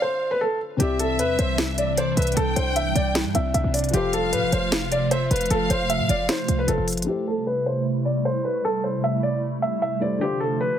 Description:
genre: hip hop, trap.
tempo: 153 BPM.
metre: 4/4.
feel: half-time.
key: A minor.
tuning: A4 = 440 Hz.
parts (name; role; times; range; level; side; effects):
felt-muted upright piano; melody; 0.0-10.8 s; G4 to E5; -24 LUFS; equal; low-pass filter.
rich studio violin section; second line; 0.0-6.6 s; D5 to G5; -30 LUFS; left 2 dB; digital delay.
dark concert grand piano; accompaniment; 0.0-10.8 s; C3 to D5; -32 LUFS; left 5 dB; low-pass filter.
hollow soft pad; sustained chords; 1.0-10.8 s; C3 to F4; -27 LUFS; right 1 dB; ensemble chorus, low-pass filter.
short 808-style bass; bass; 0.8-7.1 s; F1 to A2; -26 LUFS; equal; none.
trap drum kit; drums; 0.8-7.1 s; hi-hat, snare drum; -26 LUFS; equal; none.
room: light reverb.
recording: heavily compressed radio sound, multiband compression.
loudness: -20 LUFS.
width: side -9 dB against mid.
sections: 0.0-7.1 A section; 7.1-10.8 B section.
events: break 0.0-0.8; filter sweep 7.1-10.8.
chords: 0.0 Dm7; 0.8 Cadd9; 3.9 F; 7.1 Am7; 10.2 Dm7.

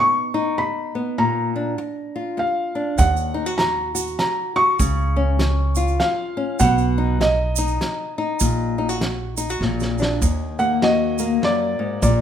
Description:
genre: acoustic folk duo or small band.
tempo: 100 BPM.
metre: 3/4.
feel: swing 61% on 8ths.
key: Eb minor.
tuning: A4 = 439 Hz.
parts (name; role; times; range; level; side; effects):
felt-muted upright piano; melody; 0.0-12.2 s; D5 to Db6; -22 LUFS; right 1 dB; none.
nylon-string guitar; accompaniment; 0.0-12.2 s; Eb2 to Gb4; -23 LUFS; left 3 dB; none.
upright bass; bass; 3.0-12.2 s; Bb1 to Eb2; -22 LUFS; right 1 dB; none.
loose indie drum kit; drums; 3.0-12.2 s; hi-hat, kick drum, ride cymbal, snare drum; -24 LUFS; right 1 dB; none.
tube shaker; percussion; 3.0-12.2 s; none; -29 LUFS; right 8 dB; none.
room: moderate large studio reverb, RT60 1.0 s.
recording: minimal, uncompressed stereo recording.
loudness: -18 LUFS.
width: side -9 dB against mid.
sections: 0.0-10.2 A section; 10.2-12.2 B section.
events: drum fill 9.6-10.2; felt piano solo 10.2-12.2.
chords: 0.0 Abm/Cb (rootless); 1.2 Bb; 3.0 Ebm; 4.8 Db; 6.6 B; 8.4 Ebm/Bb; 9.6 Bb; 10.2 Ebm.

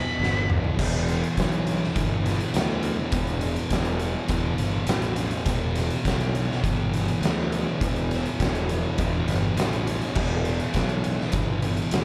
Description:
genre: stoner and doom metal.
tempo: 102 BPM.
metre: 4/4.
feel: straight.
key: E minor.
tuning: A4 = 442 Hz.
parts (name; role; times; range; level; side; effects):
octave-fuzz lead guitar; melody; 0.0-0.5 s; B5; -32 LUFS; equal; wah, distortion, slapback echo, delay.
thick fuzz guitar; riff; 0.0-12.0 s; E2 to E3; -34 LUFS; equal; distortion, slapback echo.
thick fuzz guitar; riff; 0.0-12.0 s; E2 to E3; -32 LUFS; equal; distortion, slapback echo.
fuzz fingered electric bass; bass; 0.2-12.0 s; E1 to D2; -30 LUFS; equal; overdrive, tube saturation.
oversized low-tuned drum kit; drums; 0.2-12.0 s; crash cymbal, hi-hat, kick drum, snare drum, toms; -29 LUFS; equal; none.
room: studio ambience.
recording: live gig heard through the venue's PA, club ambience.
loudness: -25 LUFS.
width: mono.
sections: 0.8-12.0 A section.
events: drum fill 0.2-0.8.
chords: 0.0 Em.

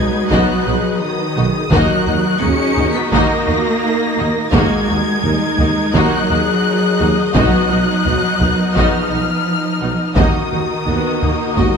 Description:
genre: cinematic, epic orchestral film score.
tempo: 85 BPM.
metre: 4/4.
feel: straight.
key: Eb minor.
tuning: A4 = 440 Hz.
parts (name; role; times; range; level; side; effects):
rich symphonic violin section; melody; 0.0-11.8 s; D#6 to Db7; -22 LUFS; left 2 dB; none.
warm symphonic violin section; second line; 0.0-11.8 s; Eb4 to D#5; -24 LUFS; left 3 dB; none.
rich symphonic viola section; accompaniment; 0.0-11.8 s; Ab3 to D#4; -24 LUFS; equal; none.
rich symphonic string section; sustained chords; 0.0-11.8 s; F#3 to D#5; -23 LUFS; equal; none.
warm French horn section; sustained chords; 0.0-11.8 s; Eb4 to Bb4; -24 LUFS; left 6 dB; none.
mellow tuba; bass; 0.0-11.7 s; B1 to Eb2; -23 LUFS; right 3 dB; none.
warm studio double bass section; bass; 0.0-11.6 s; B1 to Eb2; -22 LUFS; right 4 dB; none.
warm symphonic cello section; bass; 0.0-11.8 s; D#3 to Db4; -20 LUFS; right 1 dB; none.
taiko ensemble; drums; 0.3-11.8 s; none; -20 LUFS; equal; none.
room: moderate scoring stage reverb, RT60 1.9 s.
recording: none.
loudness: -13 LUFS.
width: side -6 dB against mid.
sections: 0.0-11.8 A section.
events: none.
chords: 0.0 B; 1.7 Ebm; 7.4 B; 10.2 Ebm.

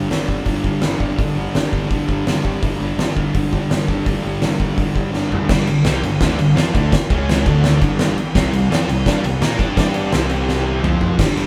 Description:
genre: garage rock duo or trio.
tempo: 168 BPM.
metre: 4/4.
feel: straight.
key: unclear.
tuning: A4 = 440 Hz.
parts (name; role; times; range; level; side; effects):
fuzz guitar; riff; 0.0-11.5 s; G2 to Bb4; -22 LUFS; equal; distortion.
fuzz picked electric bass; bass; 0.0-11.5 s; G1 to Bb2; -26 LUFS; equal; overdrive.
oversized low-tuned drum kit; drums; 0.1-11.5 s; crash cymbal, hi-hat, kick drum, ride cymbal, snare drum, toms; -21 LUFS; equal; none.
room: moderate studio reverb, RT60 0.8 s.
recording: band playing live in one room.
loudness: -18 LUFS.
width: mono.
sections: 0.0-5.5 A section; 5.5-11.2 B section.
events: drum fill 5.1-5.5, 10.5-11.2.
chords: 0.0 G5; 7.1 C#5; 7.5 D5; 7.8 G5; 8.3 C5; 9.8 G5; 10.1 C5; 10.8 F5.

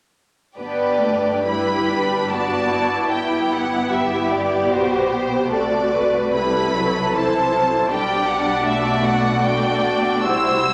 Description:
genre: classical, slow romantic movement for string orchestra.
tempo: 64-80 BPM.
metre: 3/4.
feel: rubato.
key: G major.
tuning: A4 = 440 Hz.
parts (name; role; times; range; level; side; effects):
rich studio violin section; melody; 0.6-10.7 s; C5 to E6; -24 LUFS; equal; none.
warm studio violin section; second line; 0.6-10.7 s; E4 to D5; -24 LUFS; equal; none.
warm studio viola section; accompaniment; 0.6-10.7 s; E3 to G4; -25 LUFS; equal; none.
rich studio double bass section; bass; 0.6-10.7 s; G1 to C2; -36 LUFS; equal; none.
warm symphonic cello section; bass; 0.6-10.7 s; G2 to C3; -32 LUFS; equal; none.
room: wet concert hall reverb, RT60 2.3 s.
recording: none.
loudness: -19 LUFS.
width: mono.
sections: 0.6-10.7 A section.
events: none.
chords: 0.6 G; 3.1 C/G; 5.5 D7/C; 7.9 G/B.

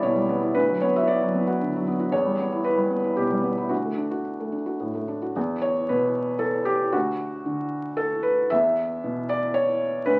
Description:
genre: neoclassical minimalist piano.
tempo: 114 BPM.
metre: 3/4.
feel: rubato.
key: E dorian.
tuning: A4 = 440 Hz.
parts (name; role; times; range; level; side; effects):
felt-muted upright piano; solo; 0.0-10.2 s; D2 to E5; -24 LUFS; equal; none.
room: moderate large studio reverb, RT60 1.2 s.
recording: very old 78 rpm record, vinyl crackle.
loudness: -25 LUFS.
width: mono.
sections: 0.0-5.4 A section; 5.4-10.2 B section.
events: none.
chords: 0.0 Em; 0.6 Bm/D; 2.1 Em; 3.7 D; 5.4 E5; 6.9 N.C.; 8.5 E5.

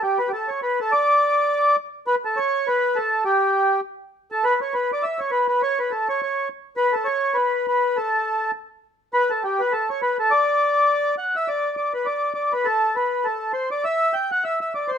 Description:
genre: celtic folk.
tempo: 204 BPM.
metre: 4/4.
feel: swing 56% on 8ths.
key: unclear.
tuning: A4 = 439 Hz.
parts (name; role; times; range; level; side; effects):
mellow accordion; solo; 0.0-15.0 s; G4 to G5; -19 LUFS; equal; none.
room: moderate studio reverb, RT60 0.9 s.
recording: minimal, uncompressed stereo recording.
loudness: -19 LUFS.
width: side -8 dB against mid.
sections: 0.0-2.1 A section; 2.1-11.5 A section; 11.5-15.0 B section.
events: none.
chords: none.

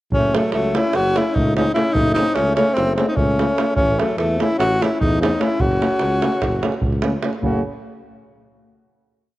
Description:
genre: balkan folk, Balkan brass band.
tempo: 296 BPM (eighths).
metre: 9/8.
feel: straight.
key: F# dorian sharp4.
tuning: A4 = 444 Hz.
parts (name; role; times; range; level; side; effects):
warm tenor saxophone; melody; 0.1-7.6 s; A3 to F#4; -19 LUFS; left 1 dB; none.
warm alto saxophone; second line; 0.1-7.6 s; E3 to C#4; -27 LUFS; left 2 dB; none.
mellow tuba; bass; 0.1-7.6 s; F#1 to E2; -24 LUFS; equal; none.
davul; percussion; 0.1-7.6 s; none; -23 LUFS; right 2 dB; none.
clear euphonium; accompaniment; 0.3-7.6 s; C#3; -29 LUFS; right 3 dB; none.
dark euphonium; accompaniment; 0.3-7.6 s; A3; -27 LUFS; left 2 dB; none.
room: light reverb.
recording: worn, warbling old tape, cassette tape, warbly pitch drift.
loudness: -16 LUFS.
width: side -16 dB against mid.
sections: 0.1-7.4 A section; 7.4-9.2 final chord.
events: none.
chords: 0.1 F#m; 3.8 A; 5.6 F#m.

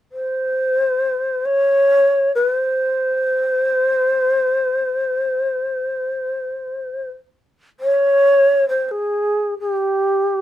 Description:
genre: japanese traditional, Japanese chamber music.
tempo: free time.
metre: none.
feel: none.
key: unclear.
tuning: A4 = 439 Hz.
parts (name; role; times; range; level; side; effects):
breathy mellow long shakuhachi; solo; 0.1-10.4 s; G4 to Db5; -16 LUFS; equal; none.
room: moderate small room ambience, RT60 0.5 s.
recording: none.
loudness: -16 LUFS.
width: side -12 dB against mid.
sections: 0.0-7.8 A section; 7.8-10.4 B section.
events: none.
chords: none.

